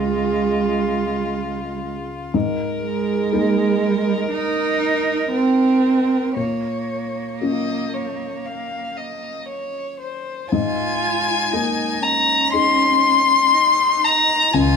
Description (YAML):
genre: neoclassical piano and strings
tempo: 59 BPM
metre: 4/4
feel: uneven beats, rubato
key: unclear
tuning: A4 = 440 Hz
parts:
  - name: warm violin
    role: melody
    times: 0.0-14.8 s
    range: F4 to C6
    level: -20 LUFS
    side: left 4 dB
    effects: tape echo
  - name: warm cello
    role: second line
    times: 0.0-14.8 s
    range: Ab3 to F4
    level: -21 LUFS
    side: right 5 dB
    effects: none
  - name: dark concert grand piano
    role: accompaniment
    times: 0.0-14.8 s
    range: Db2 to Ab4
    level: -25 LUFS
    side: left 3 dB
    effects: none
room: wet studio reverb, RT60 0.6 s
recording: band playing live in one room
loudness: -17 LUFS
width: side -6 dB against mid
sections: 0.0-10.5 A section; 10.5-14.8 B section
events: none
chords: 0.0 Db; 2.3 Absus2; 6.4 Bbm; 10.5 Absus2